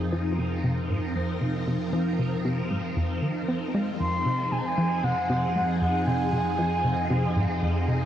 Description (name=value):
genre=ambient, sequencer-driven space music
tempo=116 BPM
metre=4/4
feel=straight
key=F phrygian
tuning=A4 = 436 Hz
part: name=phased string machine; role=sustained chords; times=0.0-8.1 s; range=F3 to Bb4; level=-30 LUFS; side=equal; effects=ensemble chorus, phaser
part: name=analog drone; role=bass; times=0.0-8.1 s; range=F2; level=-32 LUFS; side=equal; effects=chorus
part: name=plucky analog bass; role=riff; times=0.1-8.1 s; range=F2 to C4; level=-28 LUFS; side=equal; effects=ping-pong delay
part: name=mellow wooden flute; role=melody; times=4.0-7.6 s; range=Gb5 to C6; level=-28 LUFS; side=right 1 dB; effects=ping-pong delay
room=wet huge ambient reverb, RT60 9.1 s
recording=worn, warbling old tape, cassette tape, warbly pitch drift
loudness=-24 LUFS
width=side -10 dB against mid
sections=0.0-8.1 A section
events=none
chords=0.0 Fm7